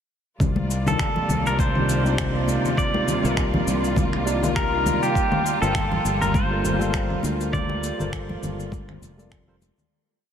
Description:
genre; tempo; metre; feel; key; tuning
sunset chillout; 101 BPM; 4/4; swing 56% on 16ths; G minor; A4 = 440 Hz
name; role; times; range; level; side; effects
muted studio string section; sustained chords; 0.4-9.9 s; C3 to D5; -28 LUFS; right 1 dB; none
fretless electric bass; bass; 0.4-9.7 s; F1 to D2; -26 LUFS; equal; lush chorus
electronic congas, shaker and finger snaps; drums; 0.4-9.9 s; none; -29 LUFS; left 3 dB; overdrive
electronic kick drum; drums; 0.4-9.4 s; none; -26 LUFS; equal; overdrive
congas; percussion; 0.6-9.7 s; none; -32 LUFS; left 1 dB; none
pedal steel guitar; melody; 0.9-8.1 s; G4 to D5; -26 LUFS; equal; tape echo
barky tine electric piano; accompaniment; 0.9-9.6 s; C3 to F5; -29 LUFS; equal; overdrive, auto-pan, vintage 12-bit sampler grit, low-pass filter, tape echo
room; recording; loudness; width
wet cathedral reverb, RT60 6.7 s; dreamy mix soaked in reverb; -20 LUFS; side -8 dB against mid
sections
0.4-9.9 groove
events
filter sweep on tine electric piano 0.4-9.9; fade-out 6.7-9.9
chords
0.4 Cm11; 5.2 Gm11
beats
| 0.40 1.00 1.59 2.18 | 2.78 3.37 3.97 4.56 | 5.16 5.75 6.34 6.94 | 7.53 8.12 8.72 9.31

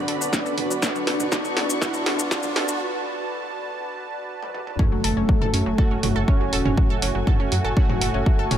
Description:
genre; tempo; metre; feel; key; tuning
melodic techno; 121 BPM; 4/4; straight; F# minor; A4 = 440 Hz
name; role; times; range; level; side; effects
fat analog lead; melody; 0.0-8.6 s; A3 to D4; -29 LUFS; equal; sidechain pumping, digital delay
airy dreamy lead; second line; 0.0-8.6 s; A4 to D5; -35 LUFS; equal; chorus, sidechain pumping, tape echo
dark analog pad; sustained chords; 0.0-8.6 s; F#4 to B5; -33 LUFS; right 1 dB; chorus, sidechain pumping
wide unison pluck; arpeggios; 0.0-8.6 s; F#3 to A5; -31 LUFS; moving between left 7 dB and right 6 dB; auto-pan, sidechain pumping, tape echo
analog synth brass; stabs; 0.0-8.6 s; A2 to F#4; -31 LUFS; right 4 dB; chorus, tremolo, sidechain pumping, tape echo
dark detuned saw bass; bass; 0.0-8.6 s; E1 to F#2; -26 LUFS; equal; sidechain pumping
riser and impact; sound effects; 0.0-6.8 s; none; -33 LUFS; equal; none
dark studio string section; texture; 0.0-8.6 s; F#4 to C#6; -36 LUFS; equal; sidechain pumping
punchy analog drum machine; drums; 0.1-8.6 s; hi-hat, snare drum, toms; -27 LUFS; equal; none
maracas; percussion; 0.2-2.8 s; none; -29 LUFS; left 4 dB; none
electronic kick drum; drums; 0.3-8.4 s; none; -20 LUFS; equal; none
room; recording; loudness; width
light reverb; high-pass filter; -20 LUFS; side -10 dB against mid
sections
0.0-4.8 A section; 4.8-8.6 B section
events
build-up 0.0-4.8; drum fill 0.0-2.8, 4.4-4.8; riser 0.0-2.8; filter sweep on analog synth lead 0.0-4.8; filter sweep on digital synth lead 0.0-4.8; filter sweep 0.0-4.8; break 2.8-4.8; drop 4.8-8.6; impact 4.8-6.8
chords
0.0 Bm; 4.8 F#madd9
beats
0.33 | 0.82 1.32 1.82 2.31 | 2.81 3.31 3.80 4.30 | 4.79 5.29 5.78 6.28 | 6.78 7.27 7.77 8.26

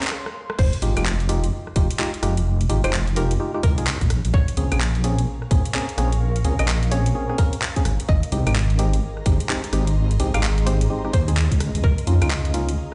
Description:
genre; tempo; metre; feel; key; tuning
UK garage, two-step garage; 128 BPM; 4/4; swing 62% on 16ths; F minor; A4 = 440 Hz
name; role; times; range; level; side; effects
string-like resonator pluck; melody; 0.0-12.1 s; Ab4 to F5; -34 LUFS; equal; chorus, tape echo
ethereal airy pad; sustained chords; 0.2-0.6 s; C6; -46 LUFS; equal; none
percussive organ stab; stabs; 0.0-12.7 s; Ab3 to Bb4; -30 LUFS; equal; chorus, dub echo
garage drum kit; drums; 0.0-12.9 s; claves, crash cymbal, handclaps, hi-hat, rim click; -30 LUFS; equal; none
ethereal airy pad; texture; 0.0-0.1, 4.9-12.9 s; Db4 to Db6; -39 LUFS; equal; ensemble chorus, built-in reverb, phaser, sidechain pumping
deep soft wobble bass; bass; 0.6-12.8 s; F1 to F2; -22 LUFS; equal; chorus, tube saturation
electronic kick drum; drums; 0.6-12.0 s; none; -21 LUFS; equal; none
room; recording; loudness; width
digital ambience; played on a big sound system in a bare room, stone room reverb, nothing above 10.7 kHz; -21 LUFS; mono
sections
0.6-12.9 A section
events
break 0.1-0.6; drum fill 0.1-0.6; drop 0.6-12.9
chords
0.4 N.C.; 0.6 Fm9; 4.1 Bbm9; 7.9 Abmaj7; 11.6 Db69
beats
0.12 | 0.59 1.06 1.52 1.99 | 2.46 2.93 3.40 3.87 | 4.34 4.81 5.27 5.74 | 6.21 6.68 7.15 7.62 | 8.09 8.56 9.02 9.49 | 9.96 10.43 10.90 11.37 | 11.84 12.31 12.77

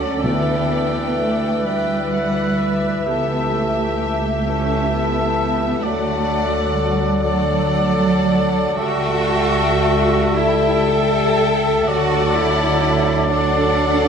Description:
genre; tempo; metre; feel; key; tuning
classical; 36-44 BPM (dotted quarters); 6/8; rubato; D major; A4 = 443 Hz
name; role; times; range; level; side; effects
rich chamber violin section; melody; 0.0-14.1 s; E5 to G5; -29 LUFS; left 6 dB; none
mellow clarinet; second line; 0.0-14.1 s; A4 to B4; -28 LUFS; left 2 dB; none
mellow cor anglais; second line; 0.0-14.1 s; D5 to E5; -26 LUFS; right 2 dB; none
mellow hollow flute section; second line; 0.0-14.1 s; E5 to A5; -27 LUFS; left 4 dB; none
rich chamber violin section; second line; 0.0-14.1 s; D5 to E5; -28 LUFS; left 4 dB; none
mellow bassoon; accompaniment; 0.0-14.1 s; E3 to G3; -27 LUFS; right 1 dB; none
rich chamber viola section; accompaniment; 0.0-14.1 s; F#4 to B4; -28 LUFS; right 3 dB; none
dark French horn section; sustained chords; 0.0-14.1 s; F#4 to E5; -25 LUFS; left 5 dB; none
warm chamber double bass section; bass; 0.0-14.1 s; C#2 to D2; -23 LUFS; right 2 dB; none
warm studio cello section; bass; 0.0-14.1 s; F#3 to A4; -22 LUFS; right 2 dB; none
timpani; percussion; 0.2-1.6 s; D3; -26 LUFS; equal; none
room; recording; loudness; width
wet scoring stage reverb, RT60 2.1 s; nothing above 10.5 kHz; -16 LUFS; side -7 dB against mid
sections
0.0-14.1 A section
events
none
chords
0.2 Em7/D; 3.1 A/C#; 5.8 D; 8.8 A7/C#; 11.9 D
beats
| 0.23 1.67 | 3.08 4.48 | 5.84 7.23 | 8.79 10.36 | 11.88 13.30

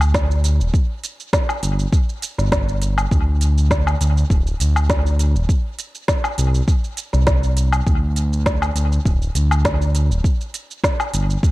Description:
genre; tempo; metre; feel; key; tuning
organic downtempo; 101 BPM; 4/4; swing 54% on 16ths; unclear; A4 = 439 Hz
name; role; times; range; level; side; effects
smooth gliding synth bass; bass; 0.0-11.4 s; D1 to D2; -17 LUFS; equal; none
organic electronic drum kit; drums; 0.0-11.5 s; hi-hat, shaker, snare drum, woodblock; -23 LUFS; equal; dub echo
electronic kick drum; drums; 0.1-11.5 s; none; -18 LUFS; equal; none
room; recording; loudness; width
little or no reverb; echo-heavy mix; -16 LUFS; side -19 dB against mid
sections
0.0-11.5 A section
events
none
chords
none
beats
0.14 | 0.74 1.33 1.93 2.52 | 3.11 3.71 4.30 4.89 | 5.49 6.08 6.68 7.27 | 7.87 8.46 9.05 9.65 | 10.24 10.84 11.43

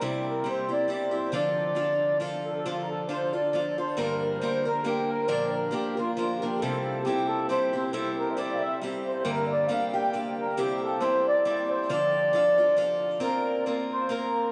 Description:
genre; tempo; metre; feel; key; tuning
celtic folk; 136 BPM; 3/4; swing 55% on 8ths; D minor; A4 = 440 Hz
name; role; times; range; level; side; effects
mellow accordion; melody; 0.0-14.5 s; F4 to G5; -29 LUFS; equal; none
picked acoustic archtop guitar; accompaniment; 0.0-14.5 s; G2 to Bb4; -33 LUFS; equal; none
mellow hollow wooden flute; second line; 2.4-12.8 s; F4 to G5; -36 LUFS; equal; none
room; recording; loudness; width
wet cathedral reverb, RT60 7.4 s; in a vast, echoing space, nothing above 10.3 kHz; -27 LUFS; mono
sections
0.0-2.6 A section; 2.6-13.2 A section; 13.2-14.5 B section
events
none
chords
0.0 C; 1.3 Dm; 4.0 Gm; 5.3 Bb; 6.6 C; 9.3 Gm; 10.6 C; 11.9 Dm; 13.2 Bbsus2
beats
| 0.01 0.45 0.89 | 1.33 1.77 2.21 | 2.65 3.09 3.53 | 3.97 4.41 4.85 | 5.29 5.73 6.17 | 6.61 7.05 7.49 | 7.93 8.37 8.81 | 9.25 9.69 10.13 | 10.58 11.02 11.46 | 11.90 12.34 12.78 | 13.22 13.67 14.11

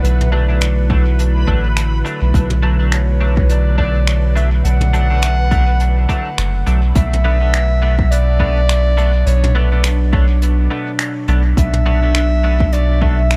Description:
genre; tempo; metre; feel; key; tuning
ambient dub; 104 BPM; 4/4; swing 57% on 16ths; B minor; A4 = 441 Hz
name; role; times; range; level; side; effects
mellow clarinet; melody; 0.0-13.4 s; B4 to F#5; -25 LUFS; equal; dub echo
warbly tape-like pad; sustained chords; 0.0-13.4 s; B2 to F#4; -28 LUFS; equal; chorus, built-in reverb, phaser, vintage 12-bit sampler grit
soft dub sub bass; bass; 0.0-13.4 s; F#1 to B1; -16 LUFS; equal; none
jazz brush drum kit; drums; 0.0-13.4 s; finger snaps, hi-hat, toms; -27 LUFS; equal; dub echo
backwards swelling texture; texture; 0.0-7.0 s; B4; -33 LUFS; equal; built-in reverb
semi-hollow electric guitar; stabs; 0.3-13.2 s; F#3 to D4; -28 LUFS; equal; analog chorus, dub echo
electronic kick drum; drums; 0.9-13.1 s; none; -20 LUFS; equal; overdrive
room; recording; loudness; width
studio ambience; none; -15 LUFS; mono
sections
0.0-7.0 A section; 7.0-13.4 B section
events
none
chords
0.0 D; 7.0 Bm7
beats
| 0.03 0.61 1.19 1.76 | 2.34 2.92 3.50 4.07 | 4.65 5.23 5.80 6.38 | 6.96 7.53 8.11 8.69 | 9.26 9.84 10.42 10.99 | 11.57 12.15 12.73 13.30

